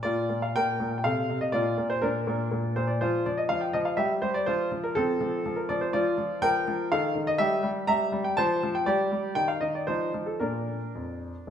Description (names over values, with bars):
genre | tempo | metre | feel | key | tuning
classical-period piano sonatina | 122 BPM | 3/4 | rubato | Bb major | A4 = 436 Hz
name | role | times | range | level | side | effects
clear grand piano | solo | 0.0-11.5 s | F2 to Bb5 | -25 LUFS | equal | none
room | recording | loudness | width
wet recital hall reverb, RT60 1.6 s | minimal, uncompressed stereo recording | -25 LUFS | side -8 dB against mid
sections
0.0-11.5 A section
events
none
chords
0.0 Bb5; 1.0 F/C; 1.5 Bb; 3.0 N.C.; 4.5 F; 5.9 Bb/F; 6.9 F7/Eb; 7.4 Gm6; 8.4 F; 8.9 N.C.; 9.9 F5; 10.4 Bb